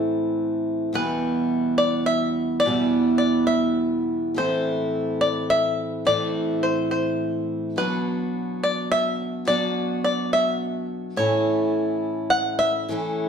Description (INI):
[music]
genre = folk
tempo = 106 BPM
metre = 3/4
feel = straight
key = E minor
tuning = A4 = 437 Hz
[part]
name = picked steel-string acoustic guitar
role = accompaniment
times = 0.0-13.3 s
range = E2 to F#4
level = -23 LUFS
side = right 1 dB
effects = none
[part]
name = bluegrass banjo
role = melody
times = 1.0-13.3 s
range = B4 to F#5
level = -23 LUFS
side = equal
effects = none
[sound]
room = wet stone room reverb, RT60 1.2 s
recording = band playing live in one room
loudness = -21 LUFS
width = side -7 dB against mid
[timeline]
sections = 0.9-13.3 A section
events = none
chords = 0.0 Am; 0.9 Em; 4.4 Am; 7.8 Bm; 11.2 A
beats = 0.37 | 0.94 1.51 2.08 | 2.65 3.21 3.78 | 4.35 4.92 5.49 | 6.06 6.63 7.20 | 7.77 8.34 8.90 | 9.47 10.04 10.61 | 11.18 11.75 12.32 | 12.89